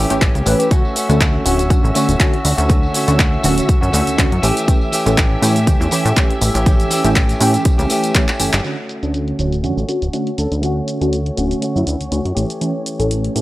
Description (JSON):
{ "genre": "filtered disco house", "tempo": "121 BPM", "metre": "4/4", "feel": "swing 55% on 16ths", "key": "D major", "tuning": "A4 = 440 Hz", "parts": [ { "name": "funky polysynth comp", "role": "accompaniment", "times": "0.0-13.4 s", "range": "D3 to B4", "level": "-20 LUFS", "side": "right 1 dB", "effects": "chorus, phaser, sidechain pumping, low-pass filter" }, { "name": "string machine, full ensemble", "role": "sustained chords", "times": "0.0-13.4 s", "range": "C#5 to E5", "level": "-28 LUFS", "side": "equal", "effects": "ensemble chorus, sidechain pumping, low-pass filter" }, { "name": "direct-recorded clean electric guitar", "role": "riff", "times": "0.0-13.4 s", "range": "E3 to G4", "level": "-22 LUFS", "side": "equal", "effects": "sidechain pumping, low-pass filter" }, { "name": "plucky analog bass", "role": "bass", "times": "0.0-13.4 s", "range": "D1 to A2", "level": "-18 LUFS", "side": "equal", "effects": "sidechain pumping, low-pass filter" }, { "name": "punchy analog drum machine", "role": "drums", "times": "0.1-13.4 s", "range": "handclaps, hi-hat, shaker", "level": "-22 LUFS", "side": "equal", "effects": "overdrive, low-pass filter on hats, low-pass filter on perc, low-pass filter on snare" }, { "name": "tambourine", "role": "percussion", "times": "0.1-8.6 s", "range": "none", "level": "-30 LUFS", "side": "left 1 dB", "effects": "sidechain pumping on perc, low-pass filter on perc" }, { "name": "electronic kick drum", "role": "drums", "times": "0.2-8.3 s", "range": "none", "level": "-15 LUFS", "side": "equal", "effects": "none" }, { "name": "warm horn section", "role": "melody", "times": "10.4-12.0 s", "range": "E4 to A4", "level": "-26 LUFS", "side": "left 1 dB", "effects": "sidechain pumping, low-pass filter, tape echo" } ], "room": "digital ambience", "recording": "dry, gritty hardware recording", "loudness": "-14 LUFS", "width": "side -17 dB against mid", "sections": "0.0-8.6 A section; 8.6-13.4 B section", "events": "drum fill 8.3-8.6; band accent 8.5; filter sweep 8.6-13.4", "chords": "0.0 A7; 0.7 Dmaj7; 4.4 A7; 8.6 Dmaj7; 12.4 A7" }